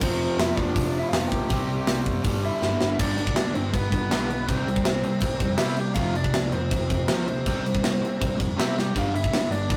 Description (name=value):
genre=punk rock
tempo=161 BPM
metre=4/4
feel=straight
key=G mixolydian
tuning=A4 = 440 Hz
part: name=biting lead guitar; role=melody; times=0.0-9.8 s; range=B3 to G5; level=-32 LUFS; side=equal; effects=overdrive
part: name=biting overdriven guitar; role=riff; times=0.0-9.8 s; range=F2 to C4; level=-36 LUFS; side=equal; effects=none
part: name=sludgy distorted guitar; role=riff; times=0.0-9.8 s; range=F2 to C4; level=-31 LUFS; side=equal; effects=overdrive
part: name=overdriven picked electric bass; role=bass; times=0.0-9.8 s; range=F1 to C3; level=-34 LUFS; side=equal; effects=none
part: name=tight metal drum kit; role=drums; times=0.0-9.8 s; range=crash cymbal, hi-hat, kick drum, snare drum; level=-28 LUFS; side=equal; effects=none
room=light reverb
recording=rough rehearsal-room recording, warm saturation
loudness=-25 LUFS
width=mono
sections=0.0-3.0 A section; 3.0-9.8 B section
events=drum fill 2.6-3.0, 8.8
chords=0.0 F5; 1.5 C5; 2.2 G5; 3.0 G; 4.5 C; 6.0 F5; 7.5 C; 9.0 G5